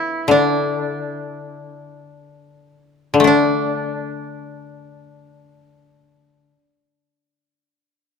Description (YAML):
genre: japanese traditional, Japanese chamber music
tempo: 33-49 BPM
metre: 2/4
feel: rubato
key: unclear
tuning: A4 = 437 Hz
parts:
  - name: koto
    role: melody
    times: 0.0-6.5 s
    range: A3 to E4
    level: -21 LUFS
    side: right 1 dB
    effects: none
  - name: koto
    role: accompaniment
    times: 0.3-6.5 s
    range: D3 to D4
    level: -18 LUFS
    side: left 5 dB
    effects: none
room: light reverb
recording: close, detailed microphones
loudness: -16 LUFS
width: side -6 dB against mid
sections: 0.0-3.3 A section; 3.3-6.6 B section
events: slowing down 0.0-3.3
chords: none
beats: | 0.30 1.64 | 3.25 4.96